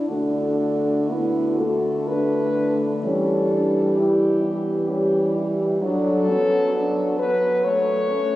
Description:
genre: classical, lyrical piece for horn quartet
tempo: 58-67 BPM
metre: 3/4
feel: rubato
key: D major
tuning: A4 = 439 Hz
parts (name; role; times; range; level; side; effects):
- warm French horn; melody; 0.0-8.4 s; E4 to C#5; -23 LUFS; left 1 dB; none
- mellow French horn; accompaniment; 0.0-8.4 s; F#3 to B3; -24 LUFS; left 1 dB; none
- mellow French horn; second line; 0.1-8.4 s; A3 to F#4; -25 LUFS; right 2 dB; none
- mellow French horn; bass; 0.1-8.3 s; D3 to F#3; -27 LUFS; equal; none
room: moderate cathedral reverb, RT60 5.8 s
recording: recorded on a phone in the room, studio reverb, compression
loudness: -19 LUFS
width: side -15 dB against mid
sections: 0.1-8.4 A section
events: none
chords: 0.1 D; 3.0 A5/E; 5.8 F#madd11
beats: | 0.09 1.10 2.08 | 3.03 3.97 4.89 | 5.82 6.74 7.65

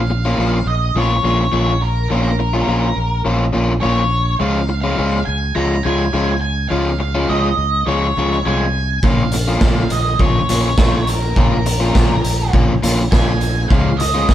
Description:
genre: indie rock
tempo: 104 BPM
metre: 4/4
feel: straight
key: Bb minor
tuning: A4 = 440 Hz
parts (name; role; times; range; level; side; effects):
- octave-fuzz lead guitar; melody; 0.0-14.3 s; Bb4 to Bb5; -22 LUFS; equal; distortion
- modern bright fingered electric bass; bass; 0.0-14.3 s; Bb1 to Db2; -19 LUFS; right 1 dB; none
- overdriven semi-hollow guitar; riff; 0.1-14.3 s; F3 to F4; -19 LUFS; left 1 dB; none
- raw garage drum kit; drums; 9.0-14.3 s; hi-hat, kick drum, snare drum; -16 LUFS; equal; none
room: moderate studio reverb, RT60 0.8 s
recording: band playing live in one room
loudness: -14 LUFS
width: side -12 dB against mid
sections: 0.0-14.3 A section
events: none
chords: 0.0 Bbm; 4.4 Db; 9.0 Bbm; 13.7 Db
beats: 0.38 0.95 1.53 | 2.10 2.68 3.25 3.83 | 4.40 4.98 5.56 6.14 | 6.71 7.29 7.87 8.45 | 9.03 9.62 10.20 10.78 | 11.36 11.95 12.53 13.11 | 13.70 14.28

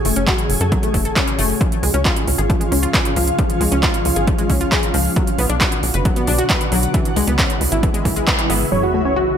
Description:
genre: uplifting trance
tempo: 135 BPM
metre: 4/4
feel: straight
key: unclear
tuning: A4 = 440 Hz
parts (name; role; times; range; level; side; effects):
- shimmering ambient pad; sustained chords; 0.0-9.4 s; G#2 to G#4; -23 LUFS; equal; chorus, built-in reverb, sidechain pumping
- analog pluck; arpeggios; 0.1-9.2 s; E3 to B4; -22 LUFS; left 3 dB; chorus, sidechain pumping, ping-pong delay
- tight sequencer bass; bass; 0.1-9.4 s; F#1 to F#2; -20 LUFS; equal; tube saturation, sidechain pumping
- big-room dance drum kit; drums; 0.1-8.7 s; handclaps, hi-hat; -21 LUFS; right 2 dB; overdrive
- electronic kick drum; drums; 0.3-8.4 s; none; -19 LUFS; equal; overdrive
- dense compressed supersaw; melody; 8.7-9.4 s; F#4 to C#5; -18 LUFS; right 1 dB; sidechain pumping, low-pass filter, tape echo
- sub drop; sound effects; 8.7-9.4 s; none; -25 LUFS; equal; none
room: light reverb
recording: none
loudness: -15 LUFS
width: side -8 dB against mid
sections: 0.0-8.7 A section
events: band accent 8.3; impact 8.7-9.4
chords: 0.0 F#m; 1.6 C#; 5.2 Bm; 6.9 C#m7; 8.7 F#m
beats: 0.28 0.72 1.16 | 1.61 2.05 2.50 2.94 | 3.39 3.83 4.28 4.72 | 5.16 5.61 6.05 6.50 | 6.94 7.39 7.83 8.28 | 8.72 9.16

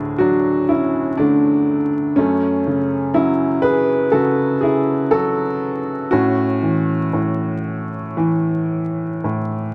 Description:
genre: classical, lyrical solo piano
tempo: 55-61 BPM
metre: 4/4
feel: rubato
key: A major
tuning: A4 = 438 Hz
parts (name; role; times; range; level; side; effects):
- clear upright piano; solo; 0.0-9.7 s; D2 to B4; -18 LUFS; equal; none
room: moderate studio reverb, RT60 0.7 s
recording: worn, warbling old tape, cassette tape, vinyl crackle, warbly pitch drift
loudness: -18 LUFS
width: mono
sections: 0.0-9.7 A section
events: none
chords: 0.0 Dmaj7; 2.2 F#m; 6.1 A6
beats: 0.19 1.19 | 2.17 3.15 4.13 5.13 | 6.12 7.14 8.18 9.25

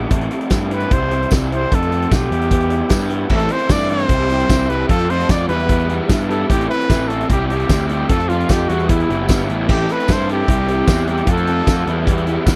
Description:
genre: indie rock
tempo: 150 BPM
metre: 4/4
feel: straight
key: E minor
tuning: A4 = 440 Hz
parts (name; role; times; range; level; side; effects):
- mellow tonewheel organ; sustained chords; 0.0-12.6 s; G4 to E6; -36 LUFS; equal; none
- raw garage guitar; riff; 0.0-12.6 s; A2 to F4; -26 LUFS; equal; overdrive
- fuzz picked electric bass; bass; 0.0-12.6 s; F#1 to G2; -23 LUFS; equal; overdrive
- loose indie drum kit; drums; 0.1-12.6 s; crash cymbal, hi-hat, kick drum, snare drum; -19 LUFS; equal; none
- tambourine; percussion; 0.5-12.6 s; none; -37 LUFS; equal; none
- breathy trumpet; melody; 0.7-12.1 s; E4 to D5; -24 LUFS; equal; none
- crunchy overdriven guitar; riff; 3.3-12.6 s; E3 to A4; -27 LUFS; equal; ensemble chorus
room: little or no reverb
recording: dry, close 1970s-style studio recording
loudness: -17 LUFS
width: mono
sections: 0.0-9.7 A section; 9.7-12.6 A section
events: none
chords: 0.1 Am7; 0.9 C; 1.7 F6; 2.3 Emadd9; 3.3 Am7; 4.1 C; 4.9 F6; 5.5 Emadd9; 6.5 Am7; 7.3 C; 8.1 F6; 8.7 Emadd9; 9.7 Am7; 10.5 C; 11.3 F6; 11.9 Emadd9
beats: | 0.11 0.51 0.91 1.31 | 1.71 2.11 2.51 2.91 | 3.31 3.71 4.11 4.51 | 4.91 5.31 5.71 6.10 | 6.50 6.90 7.30 7.70 | 8.10 8.49 8.89 9.29 | 9.69 10.09 10.48 10.88 | 11.28 11.67 12.07 12.47

